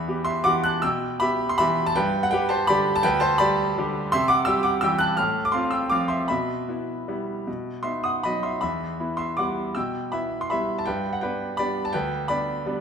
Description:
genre	classical, piano waltz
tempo	147-175 BPM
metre	3/4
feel	rubato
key	E minor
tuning	A4 = 440 Hz
part	bright concert grand piano	solo	0.0-12.8 s	D2 to F#6	-22 LUFS	equal	none
room	moderate scoring stage reverb, RT60 1.8 s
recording	minimal, uncompressed stereo recording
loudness	-22 LUFS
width	side -7 dB against mid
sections	0.0-12.8 A section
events	none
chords	0.0 Em; 1.9 G; 4.1 C; 5.2 F/A; 6.3 Em/B; 7.5 B; 8.6 Em; 10.9 G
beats	0.07 0.46 | 0.83 1.21 1.58 | 1.95 2.31 2.68 | 3.04 3.39 3.77 | 4.12 4.47 4.83 | 5.18 5.53 5.91 | 6.29 6.68 7.08 | 7.47 7.84 8.24 | 8.62 8.99 9.38 | 9.76 10.12 10.50 | 10.87 11.22 11.58 | 11.94 12.29 12.64

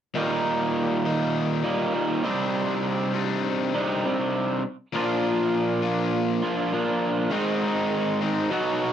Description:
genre	rock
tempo	100 BPM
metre	4/4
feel	straight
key	Eb major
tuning	A4 = 441 Hz
part	raw garage guitar	riff	0.1-8.9 s	Eb2 to F#4	-27 LUFS	left 7 dB	overdrive
part	crunchy overdriven guitar	riff	0.2-8.9 s	Eb2 to F#4	-24 LUFS	right 4 dB	wide subtle chorus, slapback echo
room	light reverb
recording	dry, close 1970s-style studio recording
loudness	-22 LUFS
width	side -9 dB against mid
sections	0.2-8.9 A section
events	none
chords	0.2 Eb; 2.2 Cmadd9; 4.9 Bb; 7.3 Ab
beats	| 0.16 0.76 1.35 1.95 | 2.55 3.14 3.74 4.34 | 4.93 5.53 6.13 6.73 | 7.32 7.92 8.52

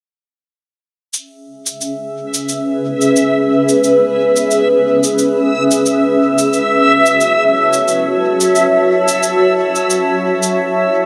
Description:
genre	ambient dub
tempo	89 BPM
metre	4/4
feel	swing 56% on 16ths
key	C# minor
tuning	A4 = 440 Hz
part	granular cloud pad	sustained chords	1.9-11.1 s	C#4 to A5	-15 LUFS	equal	built-in reverb
part	cabasa	drums	1.1-10.5 s	none	-23 LUFS	equal	none
part	backwards swelling texture	texture	1.9-10.6 s	E5	-19 LUFS	equal	built-in reverb
room	moderate huge ambient reverb, RT60 6.8 s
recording	none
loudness	-14 LUFS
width	mono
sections	1.1-11.1 A section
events	filter sweep on ambient pad 1.1-11.1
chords	1.1 C#m7; 6.5 F#m7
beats	| 1.14 1.81 2.49 3.16 | 3.84 4.51 5.18 5.86 | 6.53 7.21 7.88 8.55 | 9.23 9.90 10.58

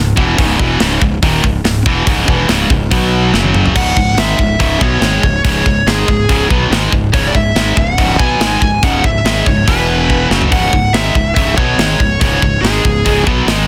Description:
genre	heavy metal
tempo	142 BPM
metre	4/4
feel	straight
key	C# minor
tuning	A4 = 439 Hz
part	high-gain distorted guitar	riff	0.0-13.7 s	C#2 to B3	-19 LUFS	equal	distortion
part	tight distorted guitar	riff	0.0-13.7 s	C#2 to B3	-20 LUFS	equal	distortion
part	fuzz fingered electric bass	bass	0.0-13.7 s	C#1 to B1	-20 LUFS	equal	overdrive
part	tight metal drum kit	drums	0.2-13.6 s	crash cymbal, hi-hat, kick drum, snare drum, toms	-18 LUFS	equal	none
part	high-gain lead guitar	melody	3.8-13.2 s	G#4 to G#5	-19 LUFS	equal	distortion, digital delay
room	little or no reverb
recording	dense, heavily limited modern master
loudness	-12 LUFS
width	mono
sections	0.0-3.8 A section; 3.8-13.7 B section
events	drum fill 3.3-3.8, 10.1-10.5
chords	0.0 C#m; 2.9 B5; 3.3 F#5; 3.8 C#m; 9.7 E5; 10.3 C#5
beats	| 0.38 0.80 1.23 1.65 | 2.07 2.49 2.91 3.33 | 3.76 4.18 4.60 5.02 | 5.45 5.87 6.29 6.71 | 7.13 7.56 7.98 8.40 | 8.83 9.25 9.67 10.10 | 10.52 10.94 11.36 11.79 | 12.21 12.63 13.05 13.48

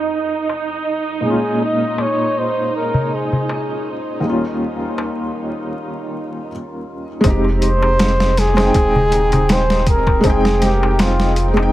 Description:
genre	trip hop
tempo	80 BPM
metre	4/4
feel	swing 54% on 16ths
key	F minor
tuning	A4 = 442 Hz
part	felt-muted upright piano	accompaniment	0.0-11.7 s	Eb2 to G5	-20 LUFS	equal	tremolo, tape echo
part	warm studio string section	sustained chords	0.0-6.5 s	Eb4	-24 LUFS	right 5 dB	stereo widening
part	backwards swelling texture	texture	0.0-6.5 s	Eb4	-34 LUFS	equal	none
part	darbuka	percussion	0.5-11.7 s	none	-22 LUFS	left 1 dB	none
part	trumpet with bucket mute	melody	1.2-11.5 s	F4 to Eb5	-20 LUFS	equal	tape echo
part	soft dub sub bass	bass	7.2-11.7 s	Eb1 to F1	-18 LUFS	equal	tube saturation
part	boom bap sampler-style drum kit	drums	7.2-11.6 s	hi-hat, kick drum, snare drum	-18 LUFS	equal	none
room	light reverb, studio ambience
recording	echo-heavy mix, vinyl crackle, low-pass filter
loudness	-15 LUFS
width	side -14 dB against mid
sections	0.0-7.2 A section; 7.2-11.7 B section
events	none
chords	0.0 Fm7; 1.2 Bbm7; 4.2 Eb7; 7.2 Fm7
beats	0.49 | 1.24 1.99 2.74 3.49 | 4.24 4.99 5.74 6.49 | 7.24 7.99 8.74 9.49 | 10.24 10.99

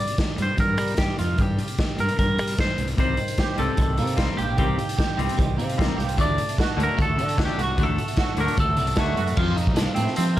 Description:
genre	indie rock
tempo	150 BPM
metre	4/4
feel	straight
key	G minor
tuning	A4 = 440 Hz
part	twangy electric guitar	melody	0.0-10.4 s	A3 to D5	-27 LUFS	equal	phaser
part	raw garage drum kit	drums	0.1-10.4 s	crash cymbal, hi-hat, kick drum, snare drum	-24 LUFS	equal	none
part	fuzz fingered electric bass	bass	0.4-10.4 s	Bb1 to G3	-26 LUFS	equal	overdrive
part	biting overdriven guitar	riff	3.0-10.4 s	Eb3 to G4	-30 LUFS	right 7 dB	ensemble chorus
part	raw garage guitar	riff	3.0-10.4 s	F2 to C4	-32 LUFS	left 9 dB	overdrive
room	studio reverb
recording	none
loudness	-20 LUFS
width	side -14 dB against mid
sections	0.0-9.4 A section; 9.4-10.4 B section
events	none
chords	0.0 Gm; 2.8 Cm7; 6.2 D; 9.4 F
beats	0.18 0.58 0.98 | 1.38 1.78 2.18 2.58 | 2.98 3.38 3.78 4.18 | 4.58 4.98 5.38 5.78 | 6.18 6.58 6.98 7.38 | 7.78 8.18 8.58 8.98 | 9.38 9.78 10.18

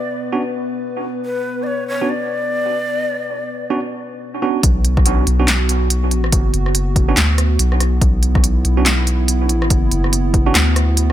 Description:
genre	deep dubstep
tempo	142 BPM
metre	4/4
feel	swing 60% on 16ths, half-time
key	B minor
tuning	A4 = 444 Hz
part	breathy long shakuhachi	melody	0.0-4.2 s	B4 to D5	-22 LUFS	left 1 dB	dub echo
part	dark analog pad	sustained chords	0.0-11.1 s	B3 to B4	-24 LUFS	right 1 dB	chorus
part	tine electric piano	stabs	0.3-10.6 s	B3 to F#4	-23 LUFS	right 4 dB	medium stereo tremolo, dub echo
part	soft dub sub bass	bass	4.6-11.1 s	F#1 to D2	-16 LUFS	equal	none
part	deep house drum kit	drums	4.6-11.1 s	handclaps, hi-hat, rim click, snare drum	-19 LUFS	equal	none
part	electronic kick drum	drums	4.6-10.4 s	none	-16 LUFS	equal	none
room	light reverb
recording	none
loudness	-14 LUFS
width	side -12 dB against mid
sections	0.0-4.6 A section; 4.6-11.1 B section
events	drop 4.6-11.1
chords	0.0 Bm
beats	0.41 0.83 | 1.25 1.68 2.10 2.52 | 2.94 3.37 3.79 4.21 | 4.63 5.06 5.48 5.90 | 6.32 6.75 7.17 7.59 | 8.02 8.44 8.86 9.28 | 9.71 10.13 10.55 10.97

